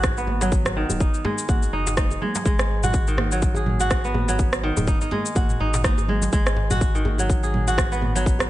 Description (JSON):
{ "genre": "afro house", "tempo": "124 BPM", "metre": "4/4", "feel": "swing 56% on 16ths", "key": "G# minor pentatonic", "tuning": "A4 = 439 Hz", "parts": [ { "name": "kora", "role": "arpeggios", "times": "0.0-8.5 s", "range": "D#3 to G#4", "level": "-25 LUFS", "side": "right 1 dB", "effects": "sidechain pumping, low-pass filter, dub echo" }, { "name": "warm sub bass", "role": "bass", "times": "0.0-8.5 s", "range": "D#1 to G#1", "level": "-26 LUFS", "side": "equal", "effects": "sidechain pumping" }, { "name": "afro-pop drum kit", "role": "drums", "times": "0.0-8.5 s", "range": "cabasa, rim click, toms", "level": "-27 LUFS", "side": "right 1 dB", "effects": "none" }, { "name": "electronic kick drum", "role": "drums", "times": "0.0-8.4 s", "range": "none", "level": "-22 LUFS", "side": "equal", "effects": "none" }, { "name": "congas", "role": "percussion", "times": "0.0-8.4 s", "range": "none", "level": "-32 LUFS", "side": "right 4 dB", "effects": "none" }, { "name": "djembe", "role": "percussion", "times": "0.0-8.5 s", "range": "none", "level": "-32 LUFS", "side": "left 2 dB", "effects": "none" } ], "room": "small room ambience", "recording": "nothing above 10.4 kHz", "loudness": "-19 LUFS", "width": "side -15 dB against mid", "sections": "0.0-8.5 A section", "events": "none", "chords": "0.0 G#m7" }